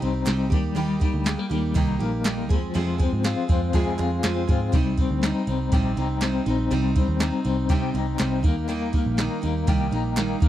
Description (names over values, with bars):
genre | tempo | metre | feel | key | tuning
jangly indie pop | 121 BPM | 4/4 | straight | Eb major | A4 = 441 Hz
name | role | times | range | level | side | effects
picked steel-string acoustic guitar | accompaniment | 0.0-10.5 s | F2 to Ab4 | -28 LUFS | right 5 dB | none
electric guitar through a small old amp | arpeggios | 0.0-10.5 s | F3 to Ab4 | -27 LUFS | left 7 dB | tremolo
vintage muted picked electric bass | bass | 0.0-10.5 s | Bb1 to F3 | -26 LUFS | equal | none
soft vintage rhythm box | drums | 0.0-10.5 s | kick drum, ride cymbal, snare drum | -23 LUFS | equal | none
group handclap | percussion | 0.3-10.3 s | none | -35 LUFS | right 6 dB | none
room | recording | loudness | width
little or no reverb | dry, close 1970s-style studio recording | -21 LUFS | side -12 dB against mid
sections
0.0-10.5 A section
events
none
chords
0.0 Cm; 0.5 Eb; 2.5 Fm; 4.7 Cm; 8.4 Eb